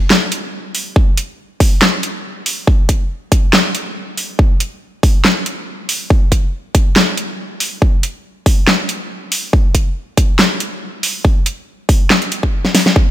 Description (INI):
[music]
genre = dubstep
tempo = 140 BPM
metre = 4/4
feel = swing 53% on 16ths, half-time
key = none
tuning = none
[part]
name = dubstep drum kit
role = drums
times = 0.1-12.9 s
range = handclaps, hi-hat, snare drum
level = -14 LUFS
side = equal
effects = studio reverb
[part]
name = electronic kick drum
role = drums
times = 1.0-13.1 s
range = none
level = -12 LUFS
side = equal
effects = studio reverb
[sound]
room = little or no reverb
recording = none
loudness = -13 LUFS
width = side -13 dB against mid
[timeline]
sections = 0.0-13.1 A section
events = drum fill 12.6-13.0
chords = none